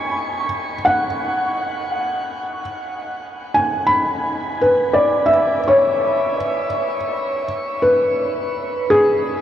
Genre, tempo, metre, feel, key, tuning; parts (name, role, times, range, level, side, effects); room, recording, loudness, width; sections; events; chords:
ambient; 56 BPM; 3/4; straight; B dorian; A4 = 440 Hz
felt-muted upright piano; solo; 0.0-9.4 s; G#4 to C#6; -17 LUFS; equal; diffuse ambient delay
wet shimmer reverb, RT60 8.4 s; worn, warbling old tape, cassette tape, warbly pitch drift; -16 LUFS; side -10 dB against mid
0.0-9.4 A section
0.0 Bm7